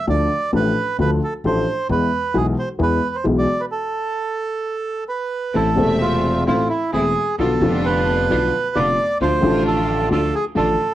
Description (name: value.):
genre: tango.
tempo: 132 BPM.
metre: 4/4.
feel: rubato.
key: A harmonic minor.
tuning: A4 = 441 Hz.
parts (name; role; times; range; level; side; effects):
bandoneon; melody; 0.0-10.9 s; E4 to D5; -21 LUFS; right 3 dB; cassette tape.
dark upright piano; accompaniment; 0.1-10.8 s; E1 to A4; -20 LUFS; left 2 dB; cassette tape.
upright bass; bass; 0.1-10.7 s; E1 to E2; -26 LUFS; equal; none.
clear symphonic string section; stabs; 5.5-10.8 s; A3 to E5; -26 LUFS; right 1 dB; cassette tape, tape echo.
room: light reverb.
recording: home recording on cassette, faint mains hum.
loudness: -17 LUFS.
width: side -13 dB against mid.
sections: 0.0-5.5 A section; 5.5-10.9 A section.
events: stop 3.7-5.5.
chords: 0.1 Dm; 1.9 E; 3.7 N.C.; 5.5 Am; 7.4 Bdim; 9.2 Dm.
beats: | 0.07 0.53 0.99 1.44 | 1.90 2.35 2.80 3.25 | 3.71 4.16 4.62 5.08 | 5.54 6.01 6.47 6.92 | 7.38 7.84 8.30 8.76 | 9.21 9.66 10.11 10.56.